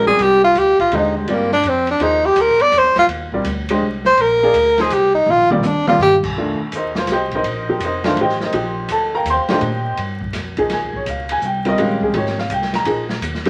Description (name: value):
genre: modal jazz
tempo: 166 BPM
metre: 3/4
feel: swing 65% on 8ths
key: Eb major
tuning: A4 = 440 Hz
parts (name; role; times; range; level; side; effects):
- breathy tenor saxophone; melody; 0.0-6.2 s; G3 to D5; -15 LUFS; equal; none
- warm upright piano; accompaniment; 0.0-13.5 s; D3 to C6; -22 LUFS; equal; none
- upright bass; bass; 0.0-13.5 s; F1 to Bb2; -30 LUFS; equal; none
- open jazz drum kit; drums; 0.2-13.5 s; crash cymbal, hi-hat, kick drum, ride cymbal, snare drum, toms; -28 LUFS; equal; none
room: moderate club reverb, RT60 0.7 s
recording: vinyl crackle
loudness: -17 LUFS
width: mono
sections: 0.0-6.4 A section; 6.4-13.5 A section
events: tenor saxophone solo 0.0-6.4; drum fill 5.3-6.0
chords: 0.0 Ebmaj9; 6.4 F9sus4; 10.7 Eb9sus4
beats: 0.19 0.56 | 0.92 1.28 1.65 | 2.01 2.37 2.73 | 3.10 3.46 3.82 | 4.18 4.55 4.91 | 5.27 5.63 6.00 | 6.36 6.72 7.08 | 7.45 7.81 8.17 | 8.53 8.89 9.26 | 9.62 9.98 10.34 | 10.70 11.06 11.42 | 11.79 12.14 12.51 | 12.87 13.23